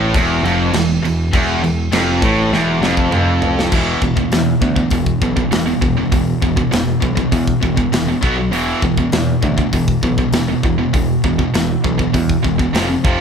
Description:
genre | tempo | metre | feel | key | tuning
heavy metal | 100 BPM | 4/4 | straight | unclear | A4 = 440 Hz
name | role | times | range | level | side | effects
crunchy overdriven guitar | riff | 0.0-3.7 s | E2 to A2 | -20 LUFS | equal | none
heavy high-gain guitar | riff | 0.0-13.2 s | E2 to B3 | -20 LUFS | left 7 dB | distortion
tight distorted guitar | riff | 0.0-13.2 s | E2 to B3 | -18 LUFS | right 6 dB | distortion
overdriven picked electric bass | bass | 0.0-13.2 s | E1 to E2 | -21 LUFS | equal | none
tight metal drum kit | drums | 0.1-13.2 s | crash cymbal, hi-hat, kick drum, snare drum, toms | -20 LUFS | equal | none
room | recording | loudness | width
light reverb | band playing live in one room | -13 LUFS | side -6 dB against mid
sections
0.0-3.7 A section; 3.7-13.2 B section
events
drum fill 2.5-3.7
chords
0.0 Fmaj7/E; 3.7 E5; 8.2 B5; 8.5 E5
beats
0.14 0.74 | 1.33 1.93 2.53 3.13 | 3.73 4.33 4.92 5.52 | 6.12 6.72 7.33 7.93 | 8.53 9.13 9.73 10.34 | 10.94 11.54 12.14 12.74

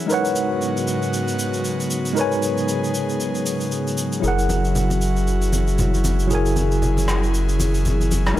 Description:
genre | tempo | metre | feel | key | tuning
amapiano | 116 BPM | 4/4 | swing 58% on 16ths | unclear | A4 = 439 Hz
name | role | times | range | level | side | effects
tine electric piano | accompaniment | 0.0-8.4 s | F#3 to G#5 | -23 LUFS | equal | overdrive, medium stereo tremolo
airy breathy pad | sustained chords | 0.0-8.4 s | G#2 to G#4 | -25 LUFS | left 1 dB | chorus
shaker and rim click | drums | 0.1-8.4 s | none | -29 LUFS | equal | none
round analog bass | bass | 4.2-8.4 s | F#1 | -20 LUFS | equal | none
congas | percussion | 4.2-8.4 s | none | -27 LUFS | left 2 dB | none
room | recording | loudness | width
small room ambience | none | -18 LUFS | side -13 dB against mid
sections
0.0-8.4 A section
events
none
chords
0.1 G#m11; 4.2 F#7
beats
| 0.10 0.61 1.13 1.65 | 2.17 2.68 3.20 3.72 | 4.24 4.75 5.27 5.79 | 6.30 6.82 7.34 7.86 | 8.37

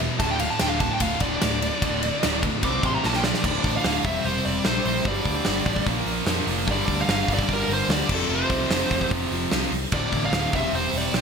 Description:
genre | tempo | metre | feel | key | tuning
hard rock | 148 BPM | 4/4 | straight | D minor | A4 = 440 Hz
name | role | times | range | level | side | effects
cranked stack guitar | riff | 0.0-11.2 s | D2 to C4 | -30 LUFS | right 10 dB | overdrive
heavy high-gain guitar | riff | 0.0-11.2 s | D2 to C4 | -30 LUFS | equal | distortion
overdriven semi-hollow guitar | riff | 0.0-11.2 s | D2 to C4 | -31 LUFS | left 11 dB | none
picked electric bass | bass | 0.0-11.2 s | D1 to F2 | -30 LUFS | equal | none
bluesy overdriven lead guitar | melody | 0.2-11.2 s | A4 to D6 | -27 LUFS | right 1 dB | distortion
big rock drum kit | drums | 0.2-11.2 s | crash cymbal, hi-hat, kick drum, ride cymbal, snare drum | -25 LUFS | equal | none
room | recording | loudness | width
moderate lush hall reverb, RT60 1.9 s, studio ambience | bright 1980s-style digital production | -21 LUFS | side -6 dB against mid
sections
0.0-3.4 A section; 3.4-11.2 B section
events
lead electric guitar solo 0.0-3.4; drum fill 3.0-3.4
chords
0.2 D5; 2.6 C5; 3.0 Bb5; 3.4 Dm; 4.1 C/E; 5.1 G5; 5.9 Bb5; 6.7 G5; 8.1 F5; 9.9 Dm; 10.5 C/E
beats
| 0.20 0.61 1.01 1.42 | 1.82 2.23 2.64 3.04 | 3.45 3.85 4.26 4.66 | 5.07 5.47 5.88 6.28 | 6.69 7.09 7.50 7.90 | 8.31 8.71 9.12 9.52 | 9.93 10.33 10.74 11.14

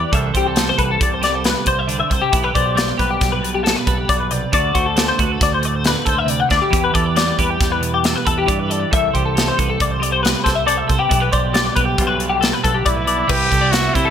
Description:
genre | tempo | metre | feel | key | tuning
math rock and midwest emo | 136 BPM | 5/4 | straight | G major | A4 = 440 Hz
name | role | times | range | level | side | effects
twelve-string electric guitar | accompaniment | 0.0-14.1 s | A2 to C5 | -22 LUFS | right 8 dB | none
twelve-string electric guitar | arpeggios | 0.0-14.1 s | F#4 to F#5 | -19 LUFS | left 6 dB | ensemble chorus, digital delay
growling fingered electric bass | bass | 0.0-14.1 s | B1 to C3 | -24 LUFS | right 1 dB | overdrive
modern studio drum kit | drums | 0.1-14.1 s | crash cymbal, hi-hat, kick drum, snare drum | -20 LUFS | equal | gated reverb
growling trumpet | melody | 12.9-14.1 s | E4 to G4 | -18 LUFS | right 1 dB | none
room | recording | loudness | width
moderate plate reverb, RT60 1.0 s, small room reverb | bright 1980s-style digital production | -15 LUFS | side -8 dB against mid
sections
0.0-13.3 A section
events
none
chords
0.1 C6; 2.3 G/B; 4.5 D7; 6.7 Em7; 8.9 C6; 11.1 G6/B; 13.3 C6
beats
| 0.13 0.57 1.01 1.45 1.89 | 2.33 2.77 3.21 3.65 4.09 | 4.53 4.96 5.41 5.84 6.28 | 6.72 7.16 7.60 8.04 8.48 | 8.92 9.36 9.80 10.24 10.68 | 11.12 11.56 11.99 12.43 12.87 | 13.31 13.75

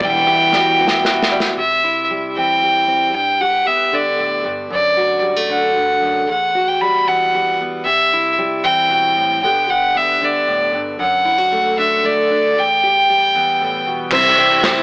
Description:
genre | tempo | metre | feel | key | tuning
indie folk with a building arrangement | 115 BPM | 3/4 | straight | unclear | A4 = 440 Hz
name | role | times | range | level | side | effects
rich fiddle | melody | 0.0-14.6 s | D5 to B5 | -14 LUFS | equal | digital delay
dark cello | second line | 0.0-1.3, 14.1-14.6 s | C3 to E3 | -27 LUFS | equal | none
picked steel-string acoustic guitar | accompaniment | 0.0-1.6, 14.1-14.8 s | E2 to G4 | -23 LUFS | left 1 dB | none
hand-pumped harmonium | sustained chords | 0.0-1.6, 14.1-14.8 s | C3 to B5 | -26 LUFS | equal | none
fingered electric bass | bass | 0.0-0.2, 14.1-14.3 s | E1 to C2 | -28 LUFS | equal | none
unplugged drum kit | drums | 0.0-1.5, 14.1-14.8 s | crash cymbal, kick drum, ride cymbal, snare drum | -18 LUFS | equal | none
open-back banjo | arpeggios | 0.3-1.6, 14.1-14.8 s | G3 to C5 | -23 LUFS | right 1 dB | digital delay
fingerpicked steel-string acoustic guitar | accompaniment | 1.6-14.8 s | E2 to G4 | -21 LUFS | equal | none
group handclap | percussion | 14.1-14.8 s | none | -22 LUFS | left 1 dB | none
room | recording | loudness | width
light reverb, studio reverb | blown-out, overdriven recording, overdrive, AM radio sound | -13 LUFS | side -25 dB against mid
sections
0.0-1.6 A section; 1.6-14.1 B section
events
drum fill 0.5-1.6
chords
0.0 Emadd9; 1.6 C; 3.1 Gadd9; 4.7 D/F#; 6.3 Emadd9; 7.9 C; 9.4 Gadd9; 11.0 D/F#; 12.6 Em; 14.1 C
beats
| 0.01 0.53 1.05 | 1.58 2.10 2.62 | 3.15 3.67 4.19 | 4.72 5.24 5.76 | 6.29 6.81 7.34 | 7.86 8.38 8.91 | 9.43 9.95 10.48 | 11.00 11.52 12.04 | 12.56 13.09 13.61 | 14.12 14.64

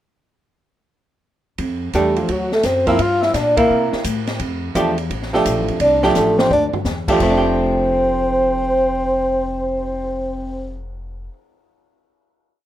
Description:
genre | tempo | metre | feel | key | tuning
jazz, small-group swing and bop | 171 BPM | 4/4 | swing 66% on 8ths | F major | A4 = 440 Hz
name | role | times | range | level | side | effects
upright bass | bass | 1.6-11.3 s | F1 to C3 | -25 LUFS | left 1 dB | none
open jazz drum kit | drums | 1.6-9.9 s | crash cymbal, cymbal swell, hi-hat, kick drum, ride cymbal, snare drum, toms | -26 LUFS | equal | none
dark alto saxophone | second line | 1.9-10.8 s | F4 to F5 | -21 LUFS | right 2 dB | plate reverb
archtop guitar, miked and amplified | accompaniment | 1.9-11.5 s | F3 to G4 | -19 LUFS | right 2 dB | plate reverb
mellow tenor saxophone | melody | 2.0-10.8 s | F3 to F4 | -19 LUFS | left 2 dB | plate reverb
room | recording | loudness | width
light reverb | rough home demo mix | -16 LUFS | side -12 dB against mid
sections
1.6-7.2 A section; 7.2-10.0 final chord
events
band accent 3.5; drum fill 6.2-6.9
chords
1.6 F69; 2.3 D7b13; 3.0 Gm; 3.7 C6; 4.4 F69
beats
| 1.59 1.94 2.29 2.64 | 2.99 3.34 3.69 4.05 | 4.40 4.75 5.10 5.45 | 5.80 6.15 6.50 6.85 | 7.20 7.55 7.91 8.26 | 8.61 8.96 9.31 9.66

